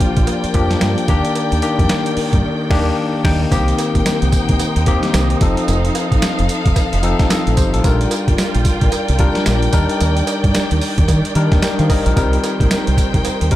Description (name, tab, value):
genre	R&B, new jack swing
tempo	111 BPM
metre	4/4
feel	swing 61% on 16ths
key	C dorian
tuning	A4 = 440 Hz
part	barky tine electric piano	accompaniment	0.0-13.6 s	Eb3 to G5	-19 LUFS	left 3 dB	none
part	warm studio string section	sustained chords	0.0-13.6 s	Eb3 to G5	-23 LUFS	equal	none
part	boom bap sampler-style drum kit	drums	0.0-13.6 s	crash cymbal, hi-hat, kick drum, snare drum, tambourine	-18 LUFS	right 1 dB	none
part	deep dub fingered electric bass	bass	0.2-13.6 s	F1 to Eb3	-17 LUFS	right 1 dB	none
part	cowbell	percussion	0.3-13.4 s	none	-31 LUFS	right 7 dB	none
room	digital ambience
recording	none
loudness	-13 LUFS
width	side -14 dB against mid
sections	0.0-3.5 A section; 3.5-13.6 B section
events	kick muted 2.4-3.5; band accent 2.4-3.5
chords	0.0 Bb6; 1.1 Ebmaj7; 3.5 Cm7; 5.4 F7; 7.8 Bb6; 9.7 Ebmaj7; 12.2 Cm7